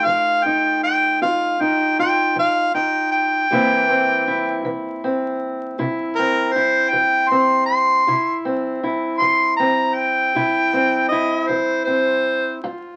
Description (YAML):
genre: acoustic country blues, solo or duo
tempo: 52 BPM (dotted quarters)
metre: 12/8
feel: straight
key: C mixolydian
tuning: A4 = 440 Hz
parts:
  - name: clear harmonica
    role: melody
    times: 0.0-12.6 s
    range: Bb4 to C6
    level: -19 LUFS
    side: equal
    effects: none
  - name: fingerpicked steel-string acoustic guitar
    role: accompaniment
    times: 0.0-13.0 s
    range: F2 to F4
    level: -24 LUFS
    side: equal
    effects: none
room: moderate studio reverb, RT60 0.9 s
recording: very old 78 rpm record, vinyl crackle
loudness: -19 LUFS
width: mono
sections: 0.0-13.0 A section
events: none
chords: 0.0 F7; 3.5 C7